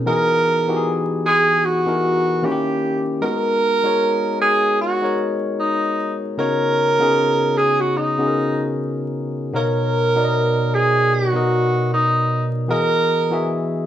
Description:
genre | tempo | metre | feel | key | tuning
R&B | 76 BPM | 4/4 | swing 57% on 16ths | unclear | A4 = 440 Hz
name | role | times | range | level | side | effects
barky tine electric piano | accompaniment | 0.0-13.9 s | B2 to E5 | -21 LUFS | left 2 dB | none
mellow tenor saxophone | melody | 0.1-13.6 s | D#4 to A#4 | -18 LUFS | right 1 dB | none
room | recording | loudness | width
moderate large studio reverb, RT60 0.9 s | band playing live in one room, vinyl crackle | -16 LUFS | side -11 dB against mid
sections
0.0-13.9 A section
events
none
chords
0.1 Emaj9; 2.4 D#7b9; 3.2 G#m7; 6.4 C#9sus4; 9.5 Bmaj7; 12.7 Emaj9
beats
| 0.06 0.85 1.64 2.43 | 3.22 4.01 4.80 5.59 | 6.38 7.17 7.96 8.75 | 9.54 10.33 11.12 11.90 | 12.70 13.48

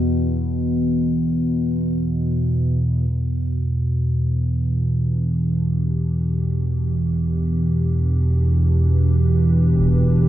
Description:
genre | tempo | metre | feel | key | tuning
dark ambient drone | free time | none | none | E minor | A4 = 440 Hz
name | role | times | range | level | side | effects
analog drone | drone | 0.0-10.3 s | E2 to B2 | -17 LUFS | equal | chorus
dark analog pad | sustained chords | 3.9-10.3 s | E3 to B4 | -32 LUFS | right 2 dB | chorus
impact | percussion | 9.8-10.0 s | none | -28 LUFS | right 1 dB | low-pass filter on sfx
room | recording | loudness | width
light reverb, digital ambience | none | -18 LUFS | side -13 dB against mid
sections
0.0-3.1 A section; 3.1-10.3 B section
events
fade-in on analog synth pad 3.1-10.3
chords
0.0 E5; 3.1 Em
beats
free time

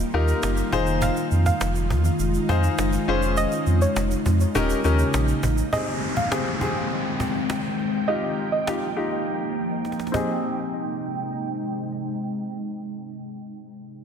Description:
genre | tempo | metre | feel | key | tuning
dance-pop | 102 BPM | 4/4 | straight | Ab major | A4 = 440 Hz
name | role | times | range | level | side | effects
ethereal airy pad | sustained chords | 0.0-13.1 s | C3 to G5 | -27 LUFS | equal | ensemble chorus, built-in reverb, low-pass filter
sub bass with octave | bass | 0.0-5.6 s | Eb1 to F2 | -22 LUFS | equal | none
warm baby grand piano | accompaniment | 0.1-13.1 s | C4 to C5 | -27 LUFS | left 4 dB | wide subtle chorus, low-pass filter
cajon | drums | 0.1-10.3 s | none | -31 LUFS | equal | none
tube shaker | percussion | 0.3-5.7 s | none | -38 LUFS | right 9 dB | none
soft round pluck | melody | 1.0-12.2 s | Db5 to F5 | -30 LUFS | right 2 dB | chorus, low-pass filter, ping-pong delay
downlifter | sound effects | 5.7-10.4 s | none | -32 LUFS | equal | none
room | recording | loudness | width
moderate lush hall reverb, RT60 1.8 s, small room ambience | dreamy mix soaked in reverb | -21 LUFS | side -7 dB against mid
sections
0.0-5.7 A section; 5.7-10.4 B section; 10.4-12.8 C section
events
drop 0.0-5.7; filter sweep 5.7-10.4; drum fill 9.8-10.4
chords
0.0 Ebadd9; 0.7 Fm7; 3.1 Dbmaj7/F; 4.5 Eb7; 5.7 Abmaj7; 8.1 Ebadd9; 10.1 Abmaj7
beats
0.43 | 1.02 1.61 2.20 2.79 | 3.37 3.96 4.55 5.14 | 5.73 6.31 6.90 7.49 | 8.08 8.67 9.26 9.84 | 10.43 11.02 11.61 12.20

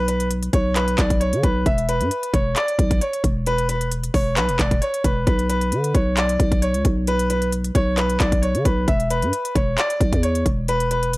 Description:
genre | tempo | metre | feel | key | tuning
hip hop, trap | 133 BPM | 4/4 | half-time | unclear | A4 = 440 Hz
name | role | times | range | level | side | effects
bright concert grand piano | melody | 0.0-11.1 s | B4 to E5 | -22 LUFS | equal | none
growling 808-style bass | bass | 0.0-11.2 s | E1 to D3 | -22 LUFS | equal | none
trap drum kit | drums | 0.1-11.2 s | handclaps, hi-hat, kick drum | -21 LUFS | equal | none
room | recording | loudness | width
digital ambience | dry, gritty hardware recording | -18 LUFS | side -20 dB against mid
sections
0.0-11.2 A section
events
none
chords
0.0 N.C.; 1.7 E5; 5.3 N.C.; 8.9 E5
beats
0.31 0.76 1.21 | 1.66 2.11 2.56 3.01 | 3.46 3.92 4.37 4.82 | 5.27 5.72 6.17 6.62 | 7.07 7.53 7.98 8.43 | 8.88 9.33 9.78 10.23 | 10.68 11.13

